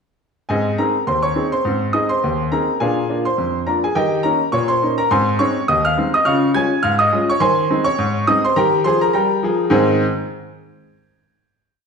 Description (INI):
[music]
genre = ragtime piano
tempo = 104 BPM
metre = 2/4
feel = swing 56% on 16ths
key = Ab major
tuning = A4 = 440 Hz
[part]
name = clear grand piano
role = solo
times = 0.5-10.0 s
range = Eb2 to Ab6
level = -15 LUFS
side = equal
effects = none
[sound]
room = wet large studio reverb, RT60 1.3 s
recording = band playing live in one room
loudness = -15 LUFS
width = side -5 dB against mid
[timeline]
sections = 0.5-9.7 A section; 9.7-10.9 final chord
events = none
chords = 0.5 Ab; 2.8 Bb7; 4.0 Eb7; 5.1 Ab; 6.3 Db; 7.4 Ab/Eb; 8.6 Eb; 9.7 Ab